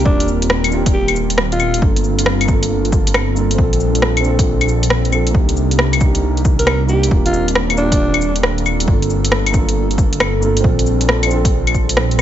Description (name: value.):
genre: future garage.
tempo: 136 BPM.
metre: 4/4.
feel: swing 65% on 16ths.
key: G minor.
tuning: A4 = 440 Hz.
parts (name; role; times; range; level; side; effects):
breathy alto saxophone; melody; 0.0-1.8, 6.6-8.4 s; D4 to Bb4; -22 LUFS; equal; digital delay.
felt-muted upright piano; accompaniment; 0.0-12.2 s; Bb3 to A4; -22 LUFS; right 5 dB; vintage 12-bit sampler grit, sidechain pumping, digital delay.
warbly tape-like pad; sustained chords; 0.0-12.2 s; G3 to Bb4; -24 LUFS; left 2 dB; chorus, built-in reverb, phaser, sidechain pumping.
swelling detuned saw bass; bass; 0.0-12.2 s; Eb1 to C2; -18 LUFS; equal; none.
electronic kick drum; drums; 0.1-11.9 s; none; -16 LUFS; equal; overdrive, studio reverb.
deep house drum kit; drums; 0.2-12.2 s; cabasa, claves, hi-hat, rim click; -18 LUFS; left 1 dB; overdrive, studio reverb.
room: light reverb, digital ambience.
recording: nothing above 7.8 kHz.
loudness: -13 LUFS.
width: side -11 dB against mid.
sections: 0.0-12.2 A section.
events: none.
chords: 0.1 Ebmaj9; 1.8 Gm7; 3.6 Bbmaj7; 5.3 Cm7; 7.1 Ebmaj9; 8.9 Gm7; 10.6 Bbmaj7.